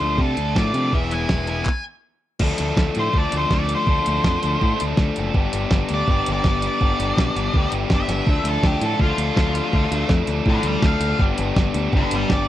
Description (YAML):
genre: indie rock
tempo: 164 BPM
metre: 4/4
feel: straight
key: unclear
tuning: A4 = 437 Hz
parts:
  - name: octave-fuzz lead guitar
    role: melody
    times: 0.0-12.5 s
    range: F4 to G#5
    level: -24 LUFS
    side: equal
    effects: distortion, slapback echo
  - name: crunchy overdriven guitar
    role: riff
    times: 0.0-12.5 s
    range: E3 to A4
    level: -26 LUFS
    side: left 6 dB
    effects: none
  - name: scooped high-gain guitar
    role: riff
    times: 0.0-12.5 s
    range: G2 to F4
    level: -28 LUFS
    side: right 7 dB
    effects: distortion, analog chorus, slapback echo
  - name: growling picked electric bass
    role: bass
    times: 0.0-12.5 s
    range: E1 to C3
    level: -24 LUFS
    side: equal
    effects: overdrive
  - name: clean 12-bit digital drum machine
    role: drums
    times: 0.2-12.4 s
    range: crash cymbal, handclaps, hi-hat, kick drum, snare drum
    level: -20 LUFS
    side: equal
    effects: none
room: little or no reverb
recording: dry, close 1970s-style studio recording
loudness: -18 LUFS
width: side -13 dB against mid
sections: 0.0-2.4 A section; 2.4-12.5 B section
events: stop 1.7-2.4; lead electric guitar solo 2.4-12.5; drum fill 8.1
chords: 0.0 Dm7; 0.9 E; 2.4 Dm7; 5.3 G; 8.3 Dm; 11.2 G